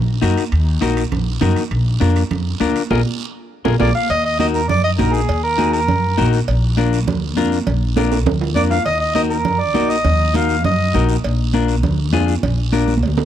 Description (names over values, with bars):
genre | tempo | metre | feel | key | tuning
latin, cumbia | 202 BPM | 4/4 | straight | Eb harmonic minor | A4 = 441 Hz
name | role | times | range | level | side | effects
upright bass | bass | 0.0-13.2 s | Bb1 to Gb2 | -18 LUFS | equal | none
clean electric guitar | accompaniment | 0.2-12.9 s | D4 to Bb4 | -22 LUFS | left 9 dB | none
congas | percussion | 0.2-13.2 s | none | -22 LUFS | right 5 dB | none
guiro | percussion | 0.2-13.2 s | none | -33 LUFS | right 11 dB | none
timbales and cowbell | percussion | 0.2-13.2 s | none | -26 LUFS | right 8 dB | none
mellow harmonica | melody | 3.8-6.3, 8.6-11.1 s | Ab4 to F5 | -19 LUFS | right 1 dB | none
room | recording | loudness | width
small room ambience | dry, close 1970s-style studio recording | -15 LUFS | side -10 dB against mid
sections
0.0-4.1 A section; 4.1-13.2 B section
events
band accent 2.9-4.1; drum fill 3.5-4.1, 8.0-8.9, 12.9-13.2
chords
0.0 Ebm; 1.7 Bb; 4.1 Ebm; 6.5 Bb; 8.9 Ebm; 11.2 Bb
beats
0.23 | 0.52 0.82 1.12 1.42 | 1.72 2.01 2.31 2.61 | 2.91 3.21 3.50 3.80 | 4.10 4.40 4.69 4.99 | 5.29 5.59 5.88 6.18 | 6.48 6.78 7.08 7.37 | 7.67 7.97 8.27 8.56 | 8.86 9.16 9.45 9.75 | 10.05 10.35 10.64 10.94 | 11.24 11.54 11.83 12.13 | 12.43 12.73 13.02